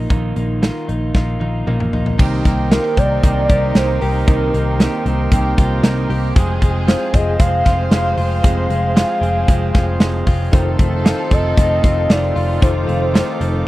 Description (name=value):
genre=jangly indie pop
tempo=115 BPM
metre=4/4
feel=straight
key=C minor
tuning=A4 = 439 Hz
part: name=electric guitar through a small old amp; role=accompaniment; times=0.0-13.7 s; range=F2 to G4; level=-25 LUFS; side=right 5 dB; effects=none
part: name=direct-recorded clean electric guitar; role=arpeggios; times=0.0-13.7 s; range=Eb3 to G4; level=-25 LUFS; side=left 5 dB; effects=tape echo
part: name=vintage muted picked electric bass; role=bass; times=0.0-13.6 s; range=F1 to C2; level=-19 LUFS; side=equal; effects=none
part: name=big rock drum kit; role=drums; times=0.1-13.5 s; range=crash cymbal, hi-hat, kick drum, snare drum, toms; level=-14 LUFS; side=equal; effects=none
part: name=warm studio violin section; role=second line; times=2.2-13.6 s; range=Eb4 to C5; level=-29 LUFS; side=equal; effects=none
part: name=accordion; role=sustained chords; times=2.2-13.7 s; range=Eb4 to D6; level=-29 LUFS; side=right 1 dB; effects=none
part: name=warbly nostalgic lead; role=melody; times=2.7-13.7 s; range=Bb4 to F5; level=-20 LUFS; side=equal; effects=chorus, tremolo
part: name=reed electric piano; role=accompaniment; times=10.5-13.7 s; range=Eb4 to C5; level=-29 LUFS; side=left 6 dB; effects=fast tremolo
room=little or no reverb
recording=dry, close 1970s-style studio recording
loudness=-13 LUFS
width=side -17 dB against mid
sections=0.0-2.2 A section; 2.2-13.7 B section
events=drum fill 1.1-2.2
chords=0.0 Bbsus4; 2.2 Cm7; 6.4 Fm; 10.5 F7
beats=| 0.10 0.62 1.15 1.67 | 2.19 2.71 3.23 3.75 | 4.27 4.79 5.32 5.84 | 6.36 6.88 7.40 7.92 | 8.44 8.96 9.49 10.01 | 10.53 11.05 11.57 12.10 | 12.62 13.14 13.67